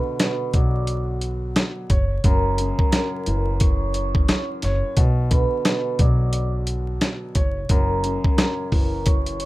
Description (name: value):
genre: hip hop, boom-bap hip-hop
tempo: 88 BPM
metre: 4/4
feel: swing 61% on 16ths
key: B harmonic minor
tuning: A4 = 440 Hz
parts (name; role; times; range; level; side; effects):
- vibraphone with soft mallets; melody; 0.0-9.5 s; A#4 to D6; -27 LUFS; right 3 dB; high-pass filter, low-pass filter, tape echo
- dark grand piano; accompaniment; 0.0-9.5 s; F#2 to C#5; -28 LUFS; left 1 dB; cassette tape, high-pass filter, low-pass filter
- dusty soul sampler-style drum kit; drums; 0.2-9.5 s; hi-hat, kick drum, snare drum; -20 LUFS; equal; none
- upright bass; bass; 0.5-9.5 s; F#1 to B1; -24 LUFS; equal; none
room: light reverb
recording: rough home demo mix, vinyl crackle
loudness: -19 LUFS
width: side -18 dB against mid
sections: 0.0-9.5 A section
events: none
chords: 0.0 Bm; 1.9 F#7; 5.0 Bm; 7.4 F#7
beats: 0.20 0.88 1.56 | 2.24 2.92 3.61 4.29 | 4.97 5.65 6.33 7.02 | 7.70 8.38 9.06